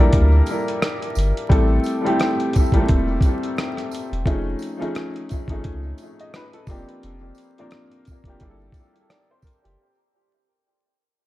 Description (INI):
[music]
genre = lo-fi hip hop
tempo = 87 BPM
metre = 4/4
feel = swing 57% on 16ths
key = G dorian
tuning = A4 = 439 Hz
[part]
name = clear upright piano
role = accompaniment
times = 0.0-10.0 s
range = F3 to Eb5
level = -23 LUFS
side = left 1 dB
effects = low-pass filter, analog delay
[part]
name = warm sub bass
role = bass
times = 0.0-9.8 s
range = E1 to D2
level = -19 LUFS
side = equal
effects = none
[part]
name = lo-fi sampler-style drum kit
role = drums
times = 0.1-9.8 s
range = hi-hat, kick drum, rim click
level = -20 LUFS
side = equal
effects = none
[part]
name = tambourine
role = percussion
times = 0.5-9.6 s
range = none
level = -45 LUFS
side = right 10 dB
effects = analog delay
[sound]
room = light reverb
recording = echo-heavy mix, vinyl crackle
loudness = -18 LUFS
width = side -17 dB against mid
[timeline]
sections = 0.0-9.8 A section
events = fade-out 0.0-9.8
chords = 0.0 Gm69; 1.5 Am7; 4.3 F7alt; 6.7 Bb69/F; 8.4 Gm69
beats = 0.12 0.81 | 1.50 2.19 2.88 3.57 | 4.26 4.95 5.64 6.33 | 7.02 7.71 8.40 9.09